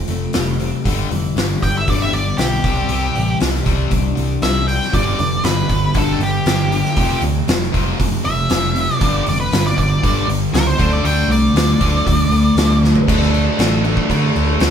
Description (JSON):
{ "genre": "quiet-loud alternative rock", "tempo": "118 BPM", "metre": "4/4", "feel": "straight", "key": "unclear", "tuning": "A4 = 440 Hz", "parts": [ { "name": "twelve-string electric guitar", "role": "arpeggios", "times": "0.0-4.9 s", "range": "G2 to G4", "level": "-26 LUFS", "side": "equal", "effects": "harmonic tremolo" }, { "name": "fuzz guitar", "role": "riff", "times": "0.0-14.7 s", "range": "F2 to D4", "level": "-21 LUFS", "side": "left 8 dB", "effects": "distortion" }, { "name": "overdriven picked electric bass", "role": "bass", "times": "0.1-14.7 s", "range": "F1 to D3", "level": "-20 LUFS", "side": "right 1 dB", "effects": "none" }, { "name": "oversized low-tuned drum kit", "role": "drums", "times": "0.1-14.7 s", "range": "crash cymbal, hi-hat, kick drum, snare drum, toms", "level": "-20 LUFS", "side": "equal", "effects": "none" }, { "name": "octave-fuzz lead guitar", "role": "melody", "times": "1.6-12.8 s", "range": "G4 to G5", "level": "-21 LUFS", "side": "equal", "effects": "distortion" }, { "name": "thick fuzz guitar", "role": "riff", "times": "4.9-14.7 s", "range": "F2 to D4", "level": "-20 LUFS", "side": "right 4 dB", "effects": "distortion" } ], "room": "moderate stone room reverb, RT60 1.3 s", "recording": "band playing live in one room", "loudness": "-14 LUFS", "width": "side -8 dB against mid", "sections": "0.0-13.1 A section; 13.1-14.7 B section", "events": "lead electric guitar solo 0.0-13.1; drum fill 12.8", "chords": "0.0 Fadd9; 0.9 G6; 2.6 Cadd9; 4.9 G; 7.0 F5; 9.0 G5; 10.8 D5", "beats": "0.34 | 0.85 1.36 1.87 2.38 | 2.90 3.40 3.92 4.43 | 4.94 5.45 5.96 6.46 | 6.97 7.48 7.99 8.50 | 9.01 9.52 10.03 10.54 | 11.05 11.56 12.06 12.57 | 13.08 13.59 14.10 14.60" }